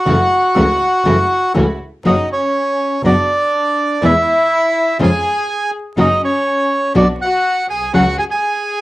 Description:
tango; 122 BPM; 4/4; rubato; A4 = 440 Hz
bandoneon; melody; 0.0-8.8 s; F#4 to G#5; -15 LUFS; right 1 dB; cassette tape
warm chamber violin section; second line; 0.0-8.8 s; C#4 to F#5; -21 LUFS; left 2 dB; cassette tape
nylon-string guitar; accompaniment; 0.1-8.0 s; B2 to G#4; -15 LUFS; left 1 dB; cassette tape
dark studio string section; stabs; 0.1-8.1 s; G#3 to F#4; -24 LUFS; right 2 dB; cassette tape
clear double bass; bass; 0.1-8.1 s; F#1 to E#2; -20 LUFS; right 1 dB
moderate small room reverb, RT60 0.6 s; home recording on cassette, vinyl crackle; -13 LUFS; side -18 dB against mid
0.0-2.1 A section; 2.1-8.8 B section
0.1 F#m7; 2.1 F#; 3.0 Bm/F#; 4.0 E; 5.0 C#/E#; 6.0 F#; 7.0 Bm; 7.9 C#sus4

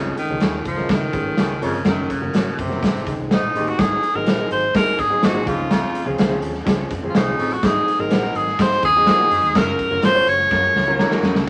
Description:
uptempo 1960s-style soul; 125 BPM; 4/4; straight; Db major; A4 = 439 Hz
breathy tenor saxophone; melody; 0.0-11.2 s; C3 to Db5; -22 LUFS; equal
warm upright piano; accompaniment; 0.0-11.5 s; Eb3 to Bb5; -28 LUFS; equal
warm baritone saxophone; riff; 0.0-11.4 s; Eb2 to Bb2; -29 LUFS; equal
vintage muted fingered electric bass; bass; 0.0-11.4 s; Gb1 to Db3; -34 LUFS; equal
raw garage drum kit; drums; 0.2-11.5 s; hi-hat, kick drum, snare drum; -23 LUFS; equal
electric guitar through a small old amp; stabs; 0.4-11.1 s; F4 to Gb5; -31 LUFS; equal
warm horn section; second line; 9.5-9.7 s; Gb3 to Bb4; -30 LUFS; equal
wet studio ambience, RT60 0.5 s; vinyl crackle; -19 LUFS; mono
0.0-3.8 A section; 3.8-11.5 B section
band accent 9.6-11.5; drum fill 10.5-11.5; upright piano fill 10.8-11.5
0.0 Db; 1.9 Gb; 2.8 Ab; 3.8 Ab7; 5.5 Dbmaj7; 7.6 Ab7; 9.6 Gbmaj7

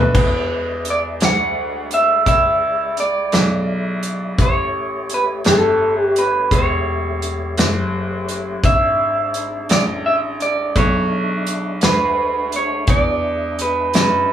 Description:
slow blues; 56 BPM (dotted quarters); 12/8; straight; E mixolydian; A4 = 441 Hz
electric guitar through a small old amp; melody; 0.0-14.3 s; A4 to F#5; -18 LUFS; right 1 dB
tonewheel organ; sustained chords; 0.0-14.3 s; G#3 to D5; -29 LUFS; left 1 dB; slow rotary speaker, overdrive, chorus vibrato
bright baby grand piano; bass; 0.0-14.3 s; E1 to F#2; -23 LUFS; equal
natural country drum kit; drums; 0.1-14.1 s; crash cymbal, hi-hat, kick drum, snare drum; -18 LUFS; equal
wet small room reverb, RT60 0.6 s; band playing live in one room, small room ambience; -15 LUFS; side -10 dB against mid
0.2-14.3 A section
drum fill 0.0
0.2 E7; 4.4 A7; 8.6 E7

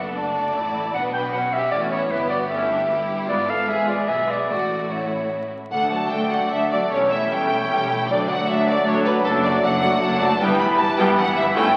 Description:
quick classical-period movement for symphony orchestra; 153 BPM; 3/4; rubato; D major; A4 = 440 Hz
clear studio violin section; melody; 0.0-11.8 s; E4 to B5; -29 LUFS; equal
clear clarinet; second line; 0.0-11.8 s; G4 to A5; -28 LUFS; equal
rich studio violin section; second line; 0.0-11.8 s; E4 to D5; -30 LUFS; equal
clear studio viola section; accompaniment; 0.0-11.7 s; E3 to F#4; -29 LUFS; equal
clear studio cello section; bass; 0.0-11.6 s; D2 to B2; -33 LUFS; equal
warm studio double bass section; bass; 0.0-11.6 s; E1 to D2; -34 LUFS; equal
large flute ensemble; second line; 5.7-11.8 s; A4 to B5; -26 LUFS; equal
warm oboe; second line; 5.7-11.8 s; B4 to D5; -32 LUFS; equal
mellow bassoon; accompaniment; 5.7-11.8 s; E3 to A3; -31 LUFS; equal
warm French horn section; sustained chords; 5.7-11.8 s; A3 to E4; -33 LUFS; equal
wet scoring stage reverb, RT60 1.6 s; very old 78 rpm record, vinyl crackle; -21 LUFS; mono
0.0-5.7 A section; 5.7-11.8 B section
0.0 D/F#; 0.9 Bm; 2.1 Em/G; 3.3 G#dim7; 4.5 A; 5.7 D; 6.9 A7/E; 8.1 D; 9.3 D/F#; 10.4 Em/G

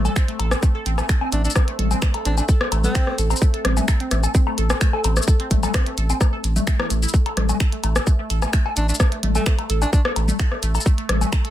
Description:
minimal techno; 129 BPM; 4/4; straight; A minor; A4 = 440 Hz
saturated sub bass; bass; 0.0-11.2 s; A1; -20 LUFS; equal; sidechain pumping
resonant blip pluck; riff; 0.1-11.5 s; E3 to A4; -29 LUFS; right 2 dB; phaser, cassette tape, sidechain pumping, ping-pong delay
minimal click drum kit; drums; 0.1-11.5 s; finger snaps, hi-hat, shaker; -28 LUFS; left 1 dB; soft clipping on snare
electronic congas, woodblock and rim click; percussion; 0.1-11.4 s; -25 LUFS; left 4 dB; soft clipping on snare
electronic kick drum; drums; 0.2-11.4 s; -18 LUFS; equal
clear alto saxophone; melody; 1.3-3.2, 8.8-10.0 s; A3 to D4; -30 LUFS; right 1 dB; dub echo
little or no reverb; dense, heavily limited modern master; -17 LUFS; side -12 dB against mid
0.0-11.5 A section

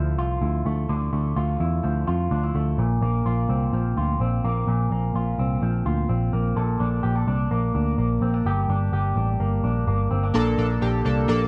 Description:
indie pop; 127 BPM; 4/4; straight; A4 = 440 Hz
electric guitar with an envelope filter; arpeggios; 0.0-11.5 s; G2 to A4; -29 LUFS; equal; spring reverb, slapback echo
vintage muted picked electric bass; bass; 0.0-11.5 s; G1 to F2; -25 LUFS; equal
chorused retro synth keys; accompaniment; 10.3-11.5 s; Bb3 to A4; -25 LUFS; equal
little or no reverb; dry, close 1970s-style studio recording; -23 LUFS; mono
0.0-6.6 A section; 6.6-11.5 B section
0.0 Dmadd9; 2.8 Bbadd9; 6.6 Bbmaj7; 8.5 Gm; 10.3 Bbmaj7

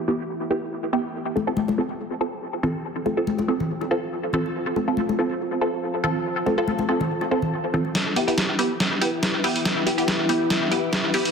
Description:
deep dubstep; 141 BPM; 4/4; swing 54% on 16ths, half-time; E phrygian; A4 = 440 Hz
deep dark ambient pad; sustained chords; 0.0-11.3 s; E4 to A5; -30 LUFS; left 1 dB; chorus, built-in reverb
filtered dub chord stab; stabs; 0.0-11.3 s; B3 to A4; -24 LUFS; right 1 dB; phaser, dub echo
congas and bongos; percussion; 1.4-7.9 s; -27 LUFS; left 3 dB; dub echo
trip hop sampler-style drum kit; drums; 8.0-11.3 s; hi-hat, snare drum; -23 LUFS; equal; low-pass filter on snare, low-pass filter on hats, low-pass filter on room
moderate echo chamber reverb, RT60 1.7 s, digital ambience; dense, heavily limited modern master; -21 LUFS; side -6 dB against mid
0.0-8.0 A section; 8.0-11.3 B section
filter sweep on ambient pad 0.0-8.0; build-up 8.0-11.3; drum fill 8.0-11.3
0.0 Em; 1.1 F; 8.0 Em

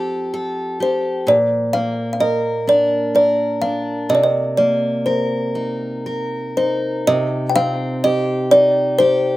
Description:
celtic folk, Celtic slow air; 63 BPM; 3/4; rubato; C dorian; A4 = 435 Hz
picked steel-string acoustic guitar; accompaniment; 0.0-9.4 s; Bb2 to Bb4; -21 LUFS; equal; slapback echo
kalimba; melody; 0.8-9.4 s; C5 to G5; -16 LUFS; equal
light reverb; recorded outdoors, with no room sound; -16 LUFS; side -17 dB against mid
0.0-7.1 A section; 7.1-9.4 A section
0.0 Fadd9; 1.3 Bb; 4.1 Cm7; 7.1 Cm

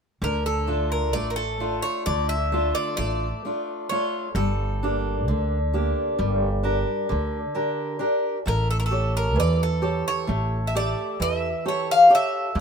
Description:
greek folk, Greek bouzouki band; 131 BPM (eighths); 9/8; straight; D harmonic minor; A4 = 440 Hz
Greek bouzouki; melody; 0.2-12.6 s; A4 to F5; -24 LUFS; left 1 dB
fingerpicked steel-string acoustic guitar; accompaniment; 0.2-12.6 s; D3 to E5; -26 LUFS; equal
upright bass; bass; 0.2-12.6 s; G1 to E2; -25 LUFS; equal
light reverb; minimal, uncompressed stereo recording; -21 LUFS; side -6 dB against mid
0.2-12.6 A section
0.2 Dm; 4.4 Gm; 8.5 A7

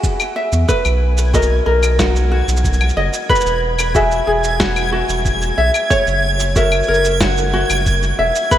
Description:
folktronica; 92 BPM; 4/4; straight; A4 = 440 Hz
ukulele; arpeggios; 0.0-8.6 s; F#4 to E5; -17 LUFS; equal; diffuse ambient delay
electronic kick drum; drums; 0.0-8.6 s; -20 LUFS; equal
electronic shaker, claves and snare drum; drums; 0.0-8.6 s; -23 LUFS; equal
warm sub bass; bass; 0.5-8.3 s; E1 to E2; -18 LUFS; equal; tube saturation
backwards swelling texture; texture; 1.3-8.6 s; G#6; -23 LUFS; right 1 dB; built-in reverb
wet cathedral reverb, RT60 6.7 s; dreamy mix soaked in reverb; -13 LUFS; side -11 dB against mid
0.0-8.6 A section
0.0 Esus2; 0.7 Bmaj7; 3.3 Eadd9; 5.9 F#7

